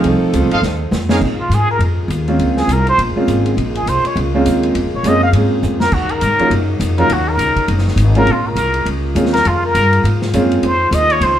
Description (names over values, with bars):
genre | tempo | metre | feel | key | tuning
jazz, big band swing | 204 BPM | 4/4 | swing 60% on 8ths | Bb minor | A4 = 440 Hz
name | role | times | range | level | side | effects
clear saxophone section | melody | 0.0-0.9 s | F3 to A4 | -22 LUFS | right 3 dB | none
clear baby grand piano | accompaniment | 0.0-10.6 s | F3 to Ab4 | -16 LUFS | right 2 dB | none
clear trumpet section | stabs | 0.0-1.2 s | Ab4 to F5 | -22 LUFS | right 1 dB | none
upright bass | bass | 0.0-11.4 s | Gb1 to Bb2 | -17 LUFS | equal | none
vintage drum kit | drums | 0.0-11.3 s | crash cymbal, hi-hat, kick drum, ride cymbal, snare drum | -25 LUFS | equal | none
bright saxophone section | sustained chords | 1.2-11.4 s | Db3 to F4 | -24 LUFS | left 2 dB | none
trumpet with plunger mute | melody | 1.4-11.4 s | F4 to F5 | -16 LUFS | equal | none
room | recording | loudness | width
moderate club reverb, RT60 0.9 s | heard from further back in the room | -12 LUFS | side -11 dB against mid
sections
0.0-1.2 A section; 1.2-11.4 B section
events
drum fill 0.6-1.2, 5.6; muted trumpet solo 1.2-11.4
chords
0.0 F7; 1.2 Bbm7; 5.9 Ebm7; 8.3 Bbm7; 10.6 F7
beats
| 0.04 0.34 0.63 0.93 | 1.22 1.52 1.81 2.10 | 2.40 2.69 2.99 3.28 | 3.58 3.87 4.16 4.46 | 4.75 5.05 5.34 5.63 | 5.93 6.22 6.51 6.81 | 7.10 7.40 7.69 7.98 | 8.28 8.57 8.87 9.16 | 9.45 9.75 10.04 10.34 | 10.63 10.92 11.22